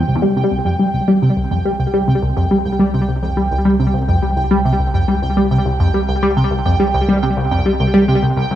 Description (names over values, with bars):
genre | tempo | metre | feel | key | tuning
ambient, sequencer-driven space music | 105 BPM | 4/4 | straight | unclear | A4 = 441 Hz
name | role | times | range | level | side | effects
tight sequenced synth | riff | 0.0-8.5 s | C2 to G3 | -14 LUFS | equal | chorus, cassette tape, tape echo, shimmer reverb
pulsing gated texture | texture | 0.0-8.6 s | G5 | -23 LUFS | right 2 dB | chorus, built-in reverb, cassette tape, shimmer reverb
round analog bass | bass | 0.1-8.6 s | C2 | -22 LUFS | equal | none
room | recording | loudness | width
wet small room reverb, RT60 0.5 s | home recording on cassette | -13 LUFS | side -12 dB against mid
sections
0.1-8.6 A section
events
none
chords
0.1 C5